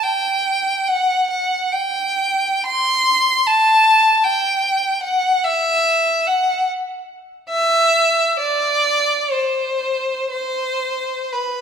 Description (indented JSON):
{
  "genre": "classical, free, expressive piece for unaccompanied violin",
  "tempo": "57-78 BPM",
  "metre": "3/4",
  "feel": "rubato",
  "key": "E minor",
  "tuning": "A4 = 440 Hz",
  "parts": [
    { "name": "clear violin", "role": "solo", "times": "0.0-11.6 s", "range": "B4 to C6", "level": "-15 LUFS", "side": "equal", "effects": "none" }
  ],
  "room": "moderate scoring stage reverb, RT60 2.1 s",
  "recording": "minimal, uncompressed stereo recording",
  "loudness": "-15 LUFS",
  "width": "side -7 dB against mid",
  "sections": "0.0-11.6 A section",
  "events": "none",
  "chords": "none",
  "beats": "| 0.02 0.86 1.72 | 2.68 3.47 4.25 | 5.03 5.83 6.66 | 7.50 8.39 9.31 | 10.30 11.33"
}